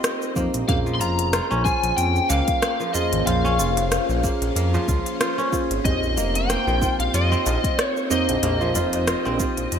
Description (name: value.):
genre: organic downtempo.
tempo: 93 BPM.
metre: 4/4.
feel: swing 55% on 16ths.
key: Bb dorian.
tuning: A4 = 440 Hz.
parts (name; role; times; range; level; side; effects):
muted felt-like synth keys; accompaniment; 0.0-9.8 s; C4 to C5; -28 LUFS; right 2 dB; chorus, sidechain pumping, ping-pong delay.
bowed-like drone; sustained chords; 0.0-9.8 s; Bb3 to G5; -31 LUFS; right 1 dB; built-in reverb, phaser, sidechain pumping.
kora; arpeggios; 0.0-9.8 s; F3 to F4; -28 LUFS; equal; ping-pong delay.
afro-pop drum kit; drums; 0.0-9.8 s; hi-hat, rim click, shaker; -26 LUFS; equal; gated reverb.
smooth synth bass; bass; 0.4-9.8 s; F1 to F2; -24 LUFS; equal; tube saturation, sidechain pumping.
electronic kick drum; drums; 0.4-9.5 s; none; -25 LUFS; equal; none.
darbuka; percussion; 0.5-9.7 s; none; -32 LUFS; right 1 dB; none.
overdriven slide guitar; melody; 0.7-9.8 s; Eb5 to C6; -25 LUFS; left 2 dB; analog chorus, ping-pong delay.
room: moderate plate reverb, RT60 1.5 s, digital ambience.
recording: bright 1980s-style digital production.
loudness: -19 LUFS.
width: side -8 dB against mid.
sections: 0.0-9.8 A section.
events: none.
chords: 0.0 Cm; 0.7 Bbm7; 5.8 Cm.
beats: 0.04 | 0.69 1.33 1.98 2.62 | 3.27 3.91 4.56 5.21 | 5.85 6.50 7.14 7.79 | 8.43 9.07 9.72.